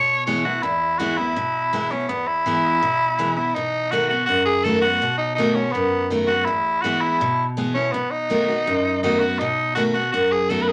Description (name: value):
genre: rock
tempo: 164 BPM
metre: 4/4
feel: straight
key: E major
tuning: A4 = 440 Hz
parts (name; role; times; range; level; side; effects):
- raspy tenor saxophone; melody; 0.0-10.7 s; B3 to C#5; -23 LUFS; equal; none
- picked steel-string acoustic guitar; accompaniment; 0.0-10.7 s; E2 to F#4; -25 LUFS; equal; none
room: wet studio ambience, RT60 0.5 s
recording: vinyl crackle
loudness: -21 LUFS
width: mono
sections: 0.6-10.7 A section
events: none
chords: 0.0 E; 3.6 B7; 6.5 E; 7.9 B7